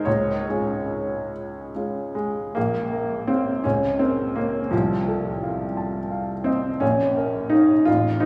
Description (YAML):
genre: classical, romantic character piece for solo piano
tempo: 47-59 BPM (dotted quarters)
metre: 6/8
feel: rubato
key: Bb minor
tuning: A4 = 440 Hz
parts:
  - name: warm upright piano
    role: solo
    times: 0.0-8.3 s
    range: A1 to A5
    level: -23 LUFS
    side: equal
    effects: none
room: wet cathedral reverb, RT60 4.5 s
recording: recorded in a church or concert hall, studio ambience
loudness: -23 LUFS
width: mono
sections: 0.0-2.6 A section; 2.6-8.3 B section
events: none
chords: 0.1 Db; 2.6 Bbm; 3.6 Bbm/Db; 4.7 F7/C; 6.8 Bbm